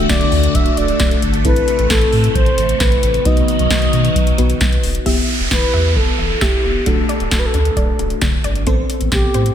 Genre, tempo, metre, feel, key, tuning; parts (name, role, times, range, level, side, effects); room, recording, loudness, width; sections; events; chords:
synth-pop; 133 BPM; 4/4; straight; E minor; A4 = 440 Hz
mellow horn-like synth lead; melody; 0.0-9.5 s; G4 to E5; -20 LUFS; equal; chorus, tape echo, slapback echo
FM electric piano with soft pad layer; accompaniment; 0.0-9.5 s; A3 to B4; -23 LUFS; left 1 dB; chorus, tremolo
phased string machine; sustained chords; 0.0-5.0 s; C3 to F#4; -20 LUFS; left 1 dB; ensemble chorus, phaser
warm sub bass; bass; 0.0-9.5 s; D1 to B2; -19 LUFS; equal
electro analog drum machine; drums; 0.1-9.5 s; crash cymbal, hi-hat, kick drum, snare drum; -17 LUFS; equal
resonant blip pluck; arpeggios; 5.1-9.5 s; C3 to E5; -27 LUFS; equal; phaser, tape echo, slapback echo
downlifter; sound effects; 5.1-8.7 s; -24 LUFS; right 2 dB; slapback echo
moderate lush hall reverb, RT60 1.7 s, digital ambience; big arena sound; -13 LUFS; side -9 dB against mid
0.0-5.1 A section; 5.1-9.5 B section
0.0 D; 1.5 Amadd9; 3.3 B; 5.1 Em; 6.9 D; 8.7 Amadd9